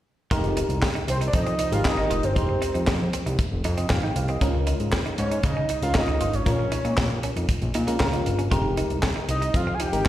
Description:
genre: early-eighties boogie funk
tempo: 117 BPM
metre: 4/4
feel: straight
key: F minor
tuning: A4 = 443 Hz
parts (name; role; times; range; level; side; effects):
- FM electric piano; accompaniment; 0.3-10.1 s; Ab3 to G5; -28 LUFS; left 1 dB; chorus, plate reverb, slapback echo
- direct-recorded clean electric guitar; riff; 0.3-10.1 s; C4 to F4; -34 LUFS; right 4 dB; wide subtle chorus, slapback echo
- fat analog bass; bass; 0.3-10.0 s; F1 to Db3; -25 LUFS; equal; none
- tight funk drum kit; drums; 0.3-10.1 s; handclaps, hi-hat, kick drum, snare drum; -26 LUFS; equal; none
- fat analog lead; melody; 1.1-10.1 s; C5 to Ab5; -27 LUFS; equal; slapback echo, plate reverb
room: light reverb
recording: live gig heard through the venue's PA, recital hall reverb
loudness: -21 LUFS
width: side -13 dB against mid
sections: 0.3-10.1 A section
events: none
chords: 0.3 Fm11; 4.4 Db6; 8.5 Fm11

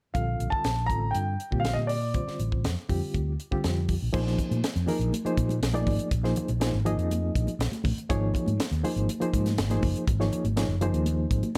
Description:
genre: electric jazz fusion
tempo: 121 BPM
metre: 4/4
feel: straight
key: Bb major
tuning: A4 = 440 Hz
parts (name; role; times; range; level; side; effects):
- warm baby grand piano; melody; 0.1-2.3 s; D5 to Bb5; -32 LUFS; equal; slapback echo
- reed electric piano; accompaniment; 0.1-11.5 s; D3 to Eb5; -33 LUFS; equal; overdrive, fast tremolo
- mellow fretless electric bass; bass; 0.1-11.6 s; Gb1 to Bb2; -30 LUFS; equal; none
- tight funk drum kit; drums; 0.1-11.6 s; crash cymbal, hi-hat, kick drum, snare drum; -33 LUFS; equal; none
- congas; percussion; 4.4-11.5 s; none; -38 LUFS; equal; none
room: light reverb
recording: none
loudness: -27 LUFS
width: mono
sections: 0.2-4.1 A section; 4.1-11.6 B section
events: none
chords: 0.2 Bbmaj9; 4.1 Bb9sus4; 8.1 Absus4

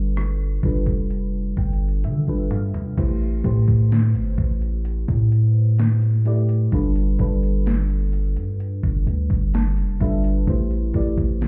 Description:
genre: contemporary R&B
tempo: 64 BPM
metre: 4/4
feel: straight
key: A minor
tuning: A4 = 442 Hz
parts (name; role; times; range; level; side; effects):
- mellow FM electric piano; accompaniment; 0.0-11.5 s; G3 to A5; -30 LUFS; equal; chorus, phaser
- long sustained 808-style bass; bass; 0.0-11.5 s; F1 to D3; -22 LUFS; equal; none
- detuned 8-bit digital drum machine; drums; 0.2-11.5 s; crash cymbal, hi-hat, kick drum, rim click, snare drum, toms; -26 LUFS; equal; overdrive
room: little or no reverb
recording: heard muffled through a wall, club reverb, EQ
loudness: -21 LUFS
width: mono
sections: 0.0-3.0 A section; 3.0-11.5 B section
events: FM electric piano fill 1.1-3.0, 9.1-10.5; drum fill 2.0-3.0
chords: 0.0 G9; 3.0 Am9; 6.7 G9; 10.5 Am9

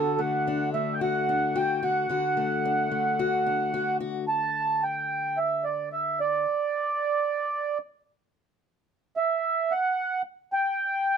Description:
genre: folk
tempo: 110 BPM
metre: 4/4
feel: straight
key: unclear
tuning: A4 = 441 Hz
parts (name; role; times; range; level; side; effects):
- mellow accordion; melody; 0.0-11.2 s; A4 to A5; -25 LUFS; right 3 dB; none
- fingerpicked acoustic archtop guitar; accompaniment; 0.0-6.4 s; D3 to F#4; -29 LUFS; left 6 dB; none
room: light reverb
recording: dark, warm production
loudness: -24 LUFS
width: side -7 dB against mid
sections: 0.0-4.3 A section; 4.3-11.2 B section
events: none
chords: 0.0 D; 4.3 N.C.

